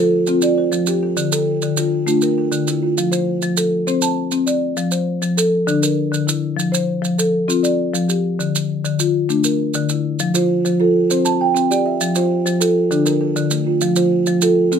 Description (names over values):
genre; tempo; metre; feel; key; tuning
southern african traditional, mbira-style interlocking cycle; 133 BPM (dotted quarters); 12/8; straight; F major; A4 = 442 Hz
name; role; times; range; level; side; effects
buzzing kalimba; arpeggios; 0.0-3.3, 10.3-14.8 s; D3 to G5; -20 LUFS; right 7 dB; none
marimba with soft mallets; arpeggios; 0.0-14.8 s; D3 to A5; -17 LUFS; left 3 dB; none
maracas; percussion; 0.3-14.8 s; none; -23 LUFS; right 6 dB; none
room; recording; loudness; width
light reverb; none; -15 LUFS; side -7 dB against mid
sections
0.0-3.0 A section; 3.0-14.8 B section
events
none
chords
0.0 F; 1.2 Dm; 3.0 F; 3.9 Amadd11/C; 4.8 F; 5.7 D5; 6.6 F; 8.4 Dm; 10.2 F; 11.1 C; 12.0 F; 12.9 Dm; 13.8 F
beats
0.27 0.72 | 1.17 1.62 2.07 2.52 | 2.97 3.42 3.87 4.32 | 4.77 5.22 5.67 6.13 | 6.58 7.03 7.48 7.93 | 8.39 8.84 9.29 9.74 | 10.20 10.65 11.10 11.55 | 12.01 12.46 12.91 13.36 | 13.81 14.27 14.72